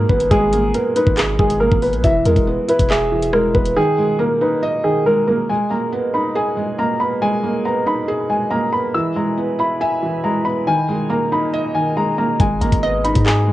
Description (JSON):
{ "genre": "hip hop, drill", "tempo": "139 BPM", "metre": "4/4", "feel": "half-time", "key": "G# minor", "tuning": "A4 = 440 Hz", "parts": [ { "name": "dark concert grand piano", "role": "melody", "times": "0.0-13.5 s", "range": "G#4 to E6", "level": "-19 LUFS", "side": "equal", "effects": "low-pass filter, cassette tape" }, { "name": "felt-muted upright piano", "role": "accompaniment", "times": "0.0-13.5 s", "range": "D#3 to E5", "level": "-20 LUFS", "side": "right 2 dB", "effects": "low-pass filter, cassette tape" }, { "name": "long sustained 808-style bass", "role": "bass", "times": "0.0-3.8, 12.4-13.5 s", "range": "E1 to G#2", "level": "-20 LUFS", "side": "equal", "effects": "none" }, { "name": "drill drum kit", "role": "drums", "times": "0.1-3.8, 12.4-13.4 s", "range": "handclaps, hi-hat, kick drum, rim click", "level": "-19 LUFS", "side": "equal", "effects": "vintage 12-bit sampler grit, cassette tape" }, { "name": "glass harmonica", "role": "sustained chords", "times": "5.5-13.5 s", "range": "G#3 to B5", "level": "-28 LUFS", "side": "left 1 dB", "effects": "cassette tape" }, { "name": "hollow square pluck", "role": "second line", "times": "12.8-13.5 s", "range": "D#5", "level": "-23 LUFS", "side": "right 2 dB", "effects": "chorus, cassette tape" } ], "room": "moderate spring reverb, RT60 1.2 s, studio ambience", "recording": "home recording on cassette", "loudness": "-15 LUFS", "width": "side -15 dB against mid", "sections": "0.0-5.5 A section; 5.5-13.5 B section", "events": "none", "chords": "0.0 G#madd9; 2.0 E; 3.8 D#sus4; 5.5 G#madd9; 8.9 E; 10.7 D#sus4; 12.4 G#madd9", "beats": "| 0.31 0.74 1.18 1.61 | 2.04 2.47 2.90 3.33 | 3.77 4.20 4.63 5.06 | 5.49 5.92 6.36 6.79 | 7.22 7.65 8.08 8.51 | 8.95 9.38 9.81 10.24 | 10.67 11.10 11.54 11.97 | 12.40 12.83 13.26" }